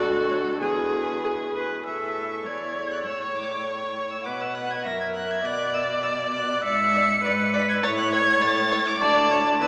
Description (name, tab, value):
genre	quick classical-period movement for string quartet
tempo	100 BPM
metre	2/4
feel	straight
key	A major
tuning	A4 = 440 Hz
part	rich violin	melody	0.0-9.7 s	B4 to C#7	-30 LUFS	equal	none
part	rich violin	second line	0.0-9.7 s	G#4 to F#5	-32 LUFS	equal	none
part	clear viola	accompaniment	0.0-9.7 s	F#4 to E5	-28 LUFS	equal	none
part	rich cello	bass	0.0-9.7 s	D2 to B2	-33 LUFS	equal	none
room	wet cathedral reverb, RT60 5.2 s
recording	recorded in a church or concert hall, vinyl crackle, small speaker sound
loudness	-24 LUFS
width	mono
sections	0.0-1.9 A section; 1.9-9.7 B section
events	none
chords	0.0 Bm7 (rootless); 0.6 E; 1.9 A; 2.5 E7; 3.1 A; 4.3 B5; 4.9 F#7; 5.4 Bm; 6.6 E7/G#; 7.8 A; 9.0 D5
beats	| 0.62 1.25 | 1.87 2.47 | 3.06 3.66 | 4.26 4.86 | 5.45 6.04 | 6.65 7.24 | 7.83 8.41 | 9.01 9.61